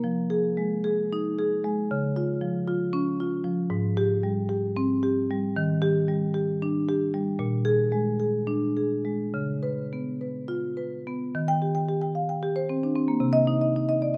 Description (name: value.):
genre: classical, contemporary piece for solo marimba.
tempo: 226 BPM (eighths).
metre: 7/8.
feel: rubato.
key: Eb major from 3.7 s.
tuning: A4 = 445 Hz.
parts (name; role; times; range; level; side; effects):
marimba with medium mallets; solo; 0.0-14.2 s; Ab2 to G5; -26 LUFS; equal; none.
room: moderate recital hall reverb, RT60 1.6 s.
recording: none.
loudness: -26 LUFS.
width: mono.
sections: 0.0-11.3 A section; 11.3-14.2 B section.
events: none.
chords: 0.0 Fm7; 1.9 Db; 3.7 Abmaj7; 5.5 Ebmaj7; 7.4 Bb7; 9.3 Db7; 11.3 Eb6; 13.2 Cmadd9.